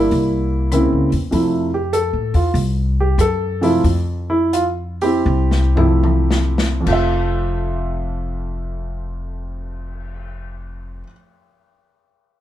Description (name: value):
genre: jazz piano trio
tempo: 69-99 BPM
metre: 4/4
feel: swing 67% on 8ths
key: F major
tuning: A4 = 441 Hz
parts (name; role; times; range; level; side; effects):
- warm baby grand piano; melody; 0.0-11.1 s; F2 to E5; -19 LUFS; right 1 dB; plate reverb
- upright bass; bass; 0.0-11.0 s; F1 to A2; -20 LUFS; left 1 dB; none
- open jazz drum kit; drums; 0.1-10.2 s; crash cymbal, cymbal swell, hi-hat, kick drum, rim click, snare drum, toms; -27 LUFS; left 2 dB; none
room: moderate studio reverb, RT60 0.5 s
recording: heard from further back in the room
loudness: -15 LUFS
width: side -12 dB against mid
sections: 0.0-6.9 A section; 6.9-10.3 B section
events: slowing down 1.3-6.9; drum fill 5.3-6.9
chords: 0.1 C7b9; 1.3 Fmaj7